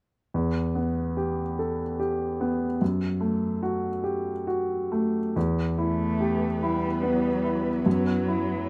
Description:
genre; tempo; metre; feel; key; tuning
neoclassical piano and strings; 48 BPM (dotted quarters); 6/8; rubato; unclear; A4 = 441 Hz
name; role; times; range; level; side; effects
warm grand piano; accompaniment; 0.3-8.7 s; E2 to A4; -27 LUFS; equal; none
ethereal airy pad; sustained chords; 6.3-8.7 s; A3 to C#5; -34 LUFS; equal; ensemble chorus, built-in reverb
warm cello; second line; 5.8-8.7 s; F#3 to A3; -32 LUFS; equal; none
room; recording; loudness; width
light reverb, small room ambience; rough home demo mix; -27 LUFS; mono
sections
0.3-5.4 A section; 5.4-8.7 B section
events
none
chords
0.3 Em; 2.8 F#m; 5.4 Em; 7.9 F#m7

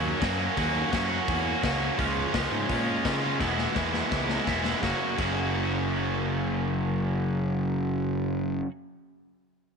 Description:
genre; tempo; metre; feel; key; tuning
garage rock duo or trio; 169 BPM; 4/4; straight; F# mixolydian; A4 = 439 Hz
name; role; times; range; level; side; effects
cranked stack guitar; riff; 0.0-8.7 s; E2 to F#4; -26 LUFS; right 1 dB; overdrive
fuzz picked electric bass; bass; 0.0-8.6 s; E1 to C#3; -32 LUFS; equal; overdrive, tube saturation
raw garage drum kit; drums; 0.2-5.3 s; crash cymbal, hi-hat, kick drum, snare drum; -32 LUFS; left 4 dB; none
room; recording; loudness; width
light reverb, small room ambience; 1960s-style stereo; -25 LUFS; side -5 dB against mid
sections
0.0-4.8 A section; 4.8-7.7 B section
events
drum fill 3.4-4.8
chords
0.0 F#; 2.0 C#; 3.4 E; 4.8 F#

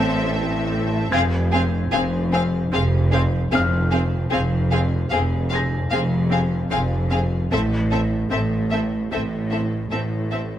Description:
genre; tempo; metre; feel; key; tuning
cinematic, suspense film score; 75 BPM; 4/4; straight; unclear; A4 = 439 Hz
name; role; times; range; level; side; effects
rich studio violin section; melody; 0.0-10.4 s; E5 to F5; -29 LUFS; left 2 dB; none
rich symphonic violin section; second line; 0.0-10.4 s; Ab4 to A4; -28 LUFS; left 3 dB; none
rich symphonic viola section; accompaniment; 0.0-10.4 s; C4; -28 LUFS; right 1 dB; none
clear symphonic cello section; bass; 0.0-10.6 s; F2 to A2; -23 LUFS; equal; none
clear symphonic double bass section; bass; 0.0-10.6 s; F1 to A1; -24 LUFS; right 2 dB; none
felt-muted upright piano; texture; 1.1-10.6 s; Ab5 to Bb6; -31 LUFS; left 2 dB; none
room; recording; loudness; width
moderate scoring stage reverb, RT60 1.6 s; none; -19 LUFS; side -11 dB against mid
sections
0.0-10.6 A section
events
none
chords
0.0 Am; 1.1 Fm; 7.5 Am

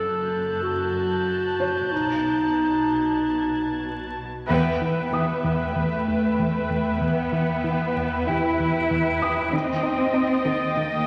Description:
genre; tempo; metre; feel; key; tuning
cinematic, suspense film score; 95 BPM; 4/4; straight; E harmonic minor from 4.5 s; A4 = 440 Hz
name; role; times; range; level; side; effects
muted studio violin section; melody; 0.0-11.1 s; G5 to A5; -37 LUFS; equal; none
clear clarinet; second line; 0.0-3.9 s; D#4 to A4; -26 LUFS; equal; none
muted studio cello section; bass; 0.0-11.1 s; Gb2 to E4; -29 LUFS; equal; none
muted studio double bass section; bass; 0.0-11.1 s; Gb1 to E2; -41 LUFS; equal; none
muted studio violin section; texture; 0.0-4.1, 9.5-11.1 s; D#6 to A6; -36 LUFS; equal; none
felt-muted upright piano; texture; 1.6-11.1 s; G4 to D#6; -36 LUFS; equal; none
muted studio violin section; second line; 4.5-11.1 s; E5 to G5; -35 LUFS; equal; none
muted studio viola section; accompaniment; 4.5-11.1 s; B4 to D#5; -30 LUFS; equal; none
plucky analog bass; riff; 4.5-11.0 s; E2 to D#4; -29 LUFS; equal; none
room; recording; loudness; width
wet scoring stage reverb, RT60 2.1 s; vinyl crackle; -24 LUFS; mono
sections
0.0-4.5 A section; 4.5-11.1 B section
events
band accent 4.5-5.1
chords
0.0 Gbm; 1.9 B7; 4.5 Em; 9.5 D#

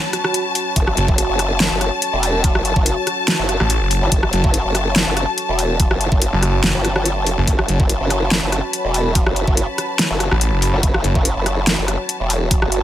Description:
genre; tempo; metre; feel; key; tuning
heavy wobble dubstep; 143 BPM; 4/4; swing 54% on 16ths, half-time; F# minor; A4 = 440 Hz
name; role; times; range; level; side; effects
lush unison pad; sustained chords; 0.0-12.8 s; F#4 to B5; -25 LUFS; right 1 dB; chorus, phaser, sidechain pumping
bright symphonic string section; texture; 0.0-12.8 s; A5; -25 LUFS; left 4 dB; sidechain pumping
dubstep drum kit; drums; 0.1-12.8 s; hi-hat, rim click, snare drum; -19 LUFS; equal; overdrive, small room ambience
formant-sweep wobble bass; bass; 0.8-12.8 s; E1 to G1; -20 LUFS; equal; chorus, overdrive
electronic kick drum; drums; 0.8-12.6 s; none; -17 LUFS; equal; overdrive, small room ambience
snarling distorted saw bass; bass; 1.0-1.1, 3.6-7.8, 10.3-11.1 s; F#1 to A1; -18 LUFS; equal; distortion, overdrive
room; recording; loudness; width
digital ambience; none; -15 LUFS; side -12 dB against mid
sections
0.0-12.8 A section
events
break 0.0-0.8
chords
0.0 F#m

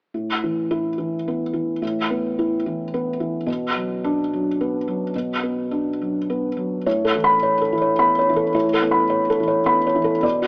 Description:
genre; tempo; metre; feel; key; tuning
neoclassical minimalist piano; 107 BPM; 3/4; rubato; A major; A4 = 440 Hz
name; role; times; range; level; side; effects
felt-muted upright piano; solo; 0.1-10.5 s; A2 to B5; -21 LUFS; equal; none
room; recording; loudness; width
moderate plate reverb, RT60 3.4 s; AM radio sound; -21 LUFS; mono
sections
0.1-6.9 A section; 6.9-10.5 B section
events
none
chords
0.1 Asus2; 3.5 Bm; 6.9 Aadd9

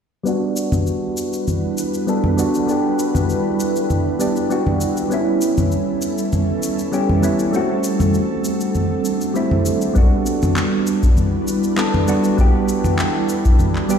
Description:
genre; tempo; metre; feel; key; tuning
sunset chillout; 99 BPM; 4/4; swing 53% on 16ths; E minor; A4 = 440 Hz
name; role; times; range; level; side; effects
soft electric-piano-like synth keys; accompaniment; 0.2-14.0 s; G3 to A4; -20 LUFS; equal; chorus, auto-pan, low-pass filter, ping-pong delay
ethereal airy pad; sustained chords; 1.2-14.0 s; G3 to B4; -22 LUFS; right 2 dB; ensemble chorus, built-in reverb, phaser
electronic shaker and handclaps; drums; 0.3-14.0 s; none; -29 LUFS; left 2 dB; none
congas; percussion; 0.7-13.7 s; none; -22 LUFS; equal; none
electronic kick drum; drums; 10.0-13.6 s; none; -15 LUFS; left 1 dB; none
room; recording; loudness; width
moderate lush hall reverb, RT60 1.9 s; played on a big sound system in a bare room, stone room reverb; -16 LUFS; side -7 dB against mid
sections
0.3-14.0 A section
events
filter sweep on synth keys 0.3-14.0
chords
0.3 Em7; 5.1 A7; 7.5 D7sus4; 10.0 Em7

